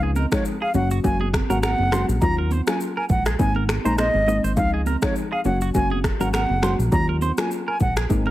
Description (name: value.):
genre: afrobeats.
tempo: 102 BPM.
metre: 4/4.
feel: swing 55% on 16ths.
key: unclear.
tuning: A4 = 441 Hz.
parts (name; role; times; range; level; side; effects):
soft round pluck; accompaniment; 0.0-8.3 s; F3 to Gb4; -25 LUFS; left 2 dB; chorus.
clean electric guitar; riff; 0.0-8.3 s; Gb4 to Eb5; -31 LUFS; right 4 dB; phaser, tape echo.
fat analog bass; bass; 0.0-8.3 s; Gb1 to Eb2; -23 LUFS; equal; none.
afro-pop drum kit; drums; 0.2-8.2 s; finger snaps, kick drum, rim click, shaker; -25 LUFS; equal; none.
congas; percussion; 0.2-8.3 s; none; -32 LUFS; right 6 dB; none.
reedy silver concert flute; melody; 0.3-7.9 s; Db5 to Bb5; -26 LUFS; right 1 dB; tape echo.
room: light reverb.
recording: heavily compressed radio sound.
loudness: -19 LUFS.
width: side -15 dB against mid.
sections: 0.0-8.3 A section.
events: none.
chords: 0.0 Dbmaj7; 0.7 Gb; 2.2 Ebm7; 3.4 Abadd9; 4.6 Dbmaj7; 5.5 Gb; 6.9 Ebm7.